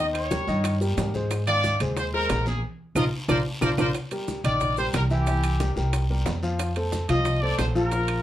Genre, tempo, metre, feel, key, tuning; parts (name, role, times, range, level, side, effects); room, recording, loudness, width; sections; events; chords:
latin, salsa; 181 BPM; 4/4; straight; Eb major; A4 = 438 Hz
bright trumpet section; melody; 0.0-8.2 s; F4 to Eb5; -27 LUFS; equal
dark baby grand piano; accompaniment; 0.0-8.2 s; Eb3 to F5; -28 LUFS; left 2 dB
upright bass; bass; 0.0-8.2 s; Bb1 to Ab2; -26 LUFS; equal
bongos; percussion; 0.1-8.2 s; -34 LUFS; left 4 dB
claves; percussion; 0.1-8.2 s; -38 LUFS; right 4 dB
timbales; percussion; 0.1-8.2 s; -34 LUFS; right 7 dB
congas; percussion; 0.2-8.2 s; -32 LUFS; equal
guiro; percussion; 0.3-8.2 s; -41 LUFS; left 1 dB
maracas; percussion; 0.3-8.1 s; -42 LUFS; right 6 dB
moderate studio reverb, RT60 0.5 s; -22 LUFS; side -13 dB against mid
0.0-4.0 A section; 4.0-8.2 B section
band accent 2.6-4.0; drum fill 3.3-4.0
0.0 Eb7; 1.3 Ab6; 2.6 Bbsus4; 3.3 Bbadd9; 4.0 Ebmaj7; 5.3 C7; 6.6 F7